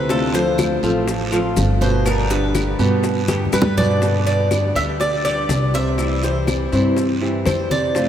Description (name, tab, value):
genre	latin, Cuban son and guajira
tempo	122 BPM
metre	4/4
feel	straight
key	C major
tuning	A4 = 440 Hz
part	Cuban tres	melody	0.0-8.1 s	A4 to E5	-23 LUFS	equal	slapback echo
part	flamenco guitar	accompaniment	0.0-8.1 s	B2 to G4	-25 LUFS	left 3 dB	none
part	dark concert grand piano	arpeggios	0.0-8.1 s	B2 to C5	-22 LUFS	right 2 dB	none
part	upright bass	bass	0.0-8.1 s	G1 to G2	-21 LUFS	equal	none
part	bongos	percussion	0.1-8.1 s	none	-30 LUFS	left 6 dB	none
part	congas	percussion	0.1-8.1 s	none	-27 LUFS	left 1 dB	none
part	guiro	percussion	0.1-8.1 s	none	-34 LUFS	right 6 dB	none
part	maracas	percussion	0.1-8.1 s	none	-37 LUFS	left 8 dB	none
part	claves	percussion	0.6-7.7 s	none	-38 LUFS	left 3 dB	none
room	wet cathedral reverb, RT60 6.6 s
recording	in a vast, echoing space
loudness	-16 LUFS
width	side -10 dB against mid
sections	0.0-4.0 A section; 4.0-8.1 B section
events	Cuban tres solo 0.0-4.0; drum fill 3.3-4.0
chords	0.1 Dm7; 2.1 G; 6.0 C